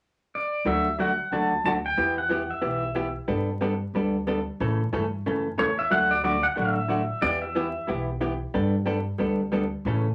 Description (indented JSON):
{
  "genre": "country, western swing",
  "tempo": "183 BPM",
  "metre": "4/4",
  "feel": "swing 61% on 8ths",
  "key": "D major",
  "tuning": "A4 = 445 Hz",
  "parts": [
    { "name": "pedal steel guitar", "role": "melody", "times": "0.4-3.1, 5.6-7.9 s", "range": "C#5 to A5", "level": "-28 LUFS", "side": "equal", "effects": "none" },
    { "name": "upright bass", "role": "bass", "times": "0.6-10.1 s", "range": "A1 to A2", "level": "-34 LUFS", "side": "equal", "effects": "none" },
    { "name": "vintage hollow-body jazz guitar", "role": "accompaniment", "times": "0.7-10.1 s", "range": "C#3 to A4", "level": "-29 LUFS", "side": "equal", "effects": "none" }
  ],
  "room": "wet small room reverb, RT60 0.5 s",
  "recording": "vinyl crackle",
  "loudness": "-26 LUFS",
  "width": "mono",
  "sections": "0.7-5.9 A section; 5.9-10.1 B section",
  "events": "none",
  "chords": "0.0 N.C.; 0.7 D; 2.0 Em; 3.3 Gadd9; 4.6 A; 5.9 D; 7.2 Em; 8.5 Gadd9",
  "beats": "0.32 | 0.65 0.98 1.31 1.64 | 1.97 2.30 2.63 2.96 | 3.29 3.62 3.95 4.28 | 4.61 4.93 5.26 5.59 | 5.92 6.25 6.58 6.90 | 7.23 7.56 7.89 8.22 | 8.54 8.87 9.20 9.53 | 9.86"
}